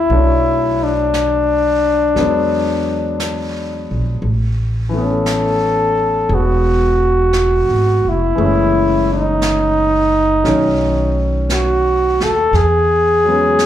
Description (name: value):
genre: jazz ballad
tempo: 58 BPM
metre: 4/4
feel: swing 69% on 8ths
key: unclear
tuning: A4 = 443 Hz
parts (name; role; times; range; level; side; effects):
- breathy flugelhorn; melody; 0.0-13.7 s; D4 to A4; -15 LUFS; equal; plate reverb, slapback echo
- warm grand piano; accompaniment; 0.0-13.7 s; D#3 to D#5; -21 LUFS; left 2 dB; plate reverb, slapback echo
- upright bass; bass; 0.0-13.7 s; E1 to E2; -19 LUFS; equal; none
- jazz brush drum kit; drums; 0.1-13.7 s; brushed snare drum, hi-hat, snare drum; -28 LUFS; right 1 dB; slapback echo
room: moderate club reverb, RT60 0.8 s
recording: live gig heard through the venue's PA, club reverb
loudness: -13 LUFS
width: side -11 dB against mid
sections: 0.0-13.7 A section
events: none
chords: 0.1 Bm9; 2.2 E9; 4.2 Amaj9; 8.4 F#m7; 10.4 B9; 12.5 E6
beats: | 0.09 1.12 2.15 3.19 | 4.22 5.25 6.29 7.33 | 8.37 9.41 10.45 11.49 | 12.54 13.58